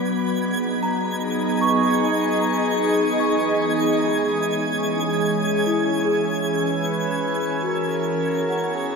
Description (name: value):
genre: ambient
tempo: 57 BPM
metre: 4/4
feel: straight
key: unclear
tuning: A4 = 440 Hz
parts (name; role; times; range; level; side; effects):
- glassy FM pad; sustained chords; 0.0-9.0 s; E3 to D#5; -21 LUFS; equal; ensemble chorus, built-in reverb
- large celesta; arpeggios; 0.0-9.0 s; E4 to C#6; -26 LUFS; equal; ping-pong delay
- twinkling granular texture; texture; 0.0-9.0 s; G#6; -29 LUFS; right 2 dB; built-in reverb
- mellow flugelhorn; melody; 6.6-9.0 s; G#4 to B4; -28 LUFS; equal; none
room: wet shimmer reverb, RT60 8.0 s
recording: none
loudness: -19 LUFS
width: side -4 dB against mid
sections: 0.0-9.0 A section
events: fade-out 3.8-9.0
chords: 0.0 G#m7; 2.4 C#m; 6.6 E6